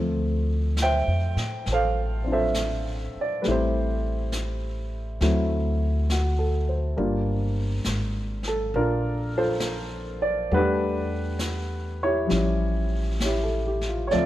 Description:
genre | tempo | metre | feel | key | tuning
jazz ballad | 68 BPM | 4/4 | swing 66% on 8ths | D minor | A4 = 440 Hz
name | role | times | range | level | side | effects
warm baby grand piano | accompaniment | 0.0-14.3 s | F3 to G5 | -26 LUFS | equal | none
upright bass | bass | 0.0-14.3 s | G1 to A2 | -26 LUFS | equal | none
vintage brush drum kit | drums | 0.8-14.3 s | brushed snare drum, hi-hat, snare drum | -34 LUFS | left 1 dB | none
room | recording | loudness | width
light reverb | none | -23 LUFS | side -14 dB against mid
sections
0.0-14.1 A section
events
none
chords
0.0 Dm9; 3.5 Am7; 5.2 D7; 7.0 Gm9; 10.5 Em11; 12.3 A7b13

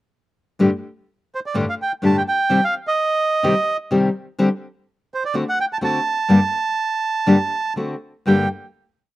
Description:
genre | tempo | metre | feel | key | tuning
tango | 126 BPM | 4/4 | rubato | G minor | A4 = 440 Hz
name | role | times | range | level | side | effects
nylon-string guitar | accompaniment | 0.6-8.5 s | G2 to G4 | -16 LUFS | left 2 dB | none
bandoneon | melody | 1.3-8.5 s | C5 to A5 | -20 LUFS | right 3 dB | slapback echo
room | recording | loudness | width
little or no reverb | recorded outdoors, with no room sound | -17 LUFS | side -16 dB against mid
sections
0.6-8.3 A section; 8.3-9.2 final chord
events
none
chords
0.6 Gsus2; 2.5 Cm; 4.4 D7sus4; 5.3 D7; 6.3 Gm; 7.8 D7; 8.3 Gm

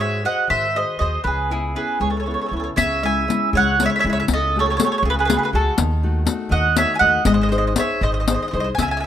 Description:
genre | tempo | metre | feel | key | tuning
italian folk, Italian serenade | 80 BPM (dotted quarters) | 6/8 | rubato | C# minor | A4 = 439 Hz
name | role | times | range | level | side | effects
mandolin | melody | 0.0-9.0 s | G#4 to G#5 | -20 LUFS | right 2 dB | none
mandolin | second line | 0.0-9.1 s | E4 to E5 | -26 LUFS | right 4 dB | none
nylon-string guitar | accompaniment | 0.0-9.1 s | C#3 to B#4 | -25 LUFS | left 4 dB | none
upright bass | bass | 0.0-9.1 s | G#1 to G#2 | -23 LUFS | equal | none
riq | percussion | 2.8-9.0 s | none | -23 LUFS | left 8 dB | none
room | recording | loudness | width
light reverb, small room ambience | rough home demo mix | -17 LUFS | side -10 dB against mid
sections
0.0-2.8 A section; 2.8-9.1 A section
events
none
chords
0.0 G#7; 1.2 C#m7; 2.8 C#m; 4.3 F#madd9/C#; 5.8 D#dim; 7.3 G#

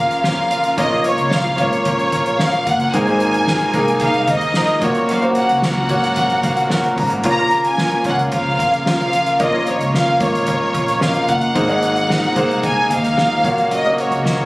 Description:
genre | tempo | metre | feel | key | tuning
piano-driven pop | 111 BPM | 4/4 | straight | Bb minor | A4 = 440 Hz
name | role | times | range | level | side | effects
warm studio violin section | melody | 0.0-14.5 s | Db5 to Bb5 | -18 LUFS | equal | none
clear grand piano | accompaniment | 0.0-14.5 s | Ab2 to Bb5 | -20 LUFS | equal | none
rich symphonic string section | sustained chords | 0.0-14.5 s | C3 to Gb4 | -26 LUFS | equal | none
direct-recorded clean electric guitar | riff | 0.0-14.5 s | Bb2 to Bb4 | -24 LUFS | right 1 dB | none
upright bass | bass | 0.0-14.5 s | Gb1 to F2 | -25 LUFS | equal | none
soft-mallet drum kit | drums | 0.1-14.4 s | hi-hat, kick drum, snare drum | -24 LUFS | equal | none
room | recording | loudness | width
moderate plate reverb, RT60 1.2 s, small room ambience | recorded on a phone in the room, club reverb, compression | -14 LUFS | side -21 dB against mid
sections
0.0-14.5 A section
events
grand piano fill 6.2-7.2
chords
0.0 Bbm; 2.9 Abadd9; 4.8 Gb; 7.2 Bbm; 11.6 Abadd9; 13.4 Gb/Bb

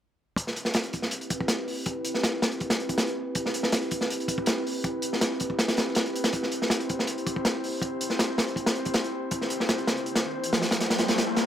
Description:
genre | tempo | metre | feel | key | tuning
drum and bass, jungle | 161 BPM | 4/4 | straight | unclear | A4 = 440 Hz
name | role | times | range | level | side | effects
airy breathy pad | sustained chords | 0.6-11.5 s | C4 to C5 | -31 LUFS | equal | chorus
crunchy breakbeat drum kit | drums | 0.4-11.5 s | hi-hat, kick drum, snare drum | -26 LUFS | equal | high-pass filter on kick, high-pass filter on hats, high-pass filter on snare, high-pass filter on room
riser | sound effects | 10.0-11.5 s | none | -32 LUFS | right 1 dB | none
room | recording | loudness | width
moderate plate reverb, RT60 1.1 s, studio ambience | none | -25 LUFS | side -10 dB against mid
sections
0.4-11.5 A section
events
filter sweep on analog synth pad 0.4-11.5; riser 10.0-11.5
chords
0.4 Cmaj7; 6.3 C

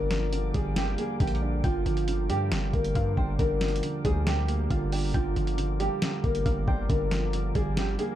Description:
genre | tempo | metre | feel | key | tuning
hip hop, trap | 137 BPM | 4/4 | half-time | G minor | A4 = 440 Hz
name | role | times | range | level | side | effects
nylon-string guitar | melody | 0.0-8.2 s | F4 to C5 | -32 LUFS | equal | none
dark grand piano | accompaniment | 0.0-8.2 s | D3 to D4 | -32 LUFS | right 4 dB | none
deep dark ambient pad | sustained chords | 0.0-8.2 s | Bb4 to D6 | -40 LUFS | left 2 dB | chorus, built-in reverb
distorted 808-style bass | bass | 0.0-8.0 s | G1 to G2 | -29 LUFS | equal | distortion
boom bap sampler-style drum kit | drums | 0.1-8.1 s | hi-hat, kick drum, snare drum | -30 LUFS | equal | none
soft round pluck | second line | 1.6-6.9 s | F5 to G5 | -42 LUFS | left 1 dB | chorus, ping-pong delay
room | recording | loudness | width
little or no reverb | dark, warm production | -25 LUFS | side -12 dB against mid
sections
0.0-8.2 A section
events
none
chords
0.0 Gm7

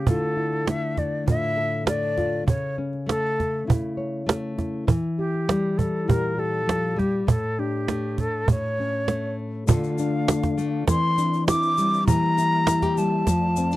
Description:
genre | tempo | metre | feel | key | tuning
acoustic folk duo or small band | 100 BPM | 4/4 | straight | D minor from 9.7 s | A4 = 440 Hz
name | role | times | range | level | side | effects
breathy concert flute | melody | 0.0-13.8 s | G4 to D6 | -26 LUFS | equal | none
nylon-string guitar | accompaniment | 0.0-13.8 s | A2 to C#5 | -25 LUFS | left 2 dB | none
cajon | percussion | 0.1-13.6 s | none | -22 LUFS | right 2 dB | none
mellow tonewheel organ | sustained chords | 9.7-13.8 s | F2 to E5 | -32 LUFS | right 2 dB | slow rotary speaker, chorus vibrato
egg shaker | percussion | 9.7-13.8 s | none | -38 LUFS | left 14 dB | none
room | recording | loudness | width
little or no reverb | dry, close 1970s-style studio recording | -21 LUFS | side -16 dB against mid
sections
0.0-9.7 A section; 9.7-13.8 B section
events
none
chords
0.1 Dmadd9; 2.5 A/C#; 4.9 Edim; 7.3 Asus4; 8.5 A; 9.7 Dm; 10.9 Cadd9/E; 12.1 Edim

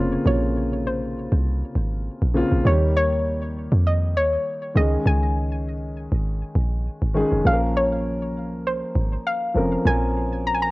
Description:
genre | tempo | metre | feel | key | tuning
afrobeats | 100 BPM | 4/4 | swing 55% on 16ths | Bb dorian | A4 = 440 Hz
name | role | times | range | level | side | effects
soft round pluck | melody | 0.0-10.7 s | C5 to Bb5 | -25 LUFS | equal | chorus, tape echo
dark grand piano | accompaniment | 0.0-10.7 s | C3 to Bb4 | -25 LUFS | left 1 dB | cassette tape
deep log drum bass | bass | 0.0-10.7 s | F1 to F2 | -22 LUFS | equal | none
room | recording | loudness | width
light reverb, small room ambience | home recording on cassette | -20 LUFS | side -20 dB against mid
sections
0.0-10.7 A section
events
none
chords
0.0 Bbmadd9; 2.7 Eb; 4.8 Dbsus2; 7.5 Bbmadd9

